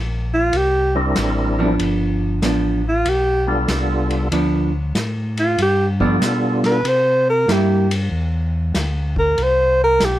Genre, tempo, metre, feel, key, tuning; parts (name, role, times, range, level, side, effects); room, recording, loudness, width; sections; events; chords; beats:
soul jazz organ trio; 95 BPM; 4/4; swing 67% on 8ths; G mixolydian; A4 = 436 Hz
mellow tonewheel organ; bass; 0.0-10.2 s; G1 to C3; -21 LUFS; equal; chorus vibrato, slow rotary speaker
breathy alto saxophone; melody; 0.3-10.2 s; F4 to C5; -16 LUFS; equal
vintage drum kit; drums; 0.5-10.2 s; hi-hat, kick drum, ride cymbal, snare drum; -27 LUFS; left 1 dB
percussive tonewheel organ; melody; 0.9-6.8 s; G3 to Bb4; -20 LUFS; equal; slow rotary speaker, overdrive, chorus vibrato
vintage hollow-body jazz guitar; accompaniment; 1.6-7.9 s; F3 to E4; -19 LUFS; right 2 dB
little or no reverb; dark, warm production; -16 LUFS; side -14 dB against mid
0.0-10.2 A section
alto saxophone solo 0.0-10.2
0.0 C7; 1.8 G7; 6.9 C7
0.53 1.17 | 1.80 2.43 3.06 3.69 | 4.33 4.96 5.59 6.22 | 6.85 7.48 8.11 8.74 | 9.38 10.01